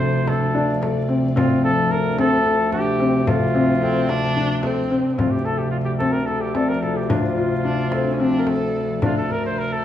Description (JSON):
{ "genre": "contemporary instrumental, chamber music in an uneven meter", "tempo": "219 BPM (eighths)", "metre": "7/8", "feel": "straight", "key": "D minor", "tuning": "A4 = 440 Hz", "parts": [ { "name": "warm flugelhorn", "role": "melody", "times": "0.0-9.8 s", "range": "F4 to C5", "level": "-24 LUFS", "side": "right 1 dB", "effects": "none" }, { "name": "ethereal airy pad", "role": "sustained chords", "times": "0.0-9.8 s", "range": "C3 to D4", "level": "-25 LUFS", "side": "equal", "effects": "ensemble chorus, built-in reverb, phaser" }, { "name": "felt-muted upright piano", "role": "arpeggios", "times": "0.0-9.6 s", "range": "C4 to Bb4", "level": "-23 LUFS", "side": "left 2 dB", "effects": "none" }, { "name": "warm bass clarinet", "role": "bass", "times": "0.0-9.8 s", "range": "D2", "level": "-25 LUFS", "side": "left 1 dB", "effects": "none" }, { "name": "frame drum", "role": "percussion", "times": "0.3-9.3 s", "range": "none", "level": "-27 LUFS", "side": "left 1 dB", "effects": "none" }, { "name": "celesta", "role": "texture", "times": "0.6-9.8 s", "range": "F4 to A5", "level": "-33 LUFS", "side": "left 5 dB", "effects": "none" }, { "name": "warm viola", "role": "second line", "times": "3.8-8.9 s", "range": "C4 to Bb4", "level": "-26 LUFS", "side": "right 1 dB", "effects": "none" } ], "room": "moderate scoring stage reverb, RT60 1.9 s", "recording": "small room ambience", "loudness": "-18 LUFS", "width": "side -11 dB against mid", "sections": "0.0-5.2 A section; 5.2-9.8 B section", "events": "none", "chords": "0.0 Dm7; 9.0 Bbadd9/D" }